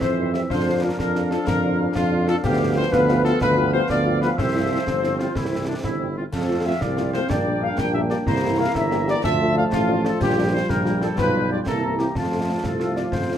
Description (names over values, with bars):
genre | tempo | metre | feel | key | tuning
military-style march for wind band | 124 BPM (dotted quarters) | 6/8 | straight | unclear | A4 = 441 Hz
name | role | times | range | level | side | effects
mellow trumpet section | melody | 0.0-13.4 s | F4 to G5 | -28 LUFS | left 2 dB | none
mellow flute section | second line | 0.0-13.4 s | F4 to G5 | -28 LUFS | left 2 dB | none
warm woodwind section | second line | 0.0-13.4 s | B3 to Bb5 | -27 LUFS | left 1 dB | none
clear trombone section | sustained chords | 0.0-13.4 s | E3 to D4 | -27 LUFS | right 1 dB | none
warm tuba | bass | 0.0-13.4 s | G1 to F2 | -25 LUFS | right 2 dB | none
concert snare drum, concert bass drum and clash cymbals | drums | 0.0-13.4 s | none | -29 LUFS | equal | none
dark French horn section | accompaniment | 0.2-13.3 s | F3 to G4 | -29 LUFS | left 2 dB | none
room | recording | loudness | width
light reverb | none | -19 LUFS | side -9 dB against mid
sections
0.0-13.4 A section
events
none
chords
0.0 C/F; 0.5 Bb/F; 2.4 G7/D; 4.4 C; 6.3 F; 7.3 Gm/Bb; 8.3 C7; 9.2 Dm; 10.2 Gm7/Bb; 11.2 G7/B; 11.7 C7; 12.2 F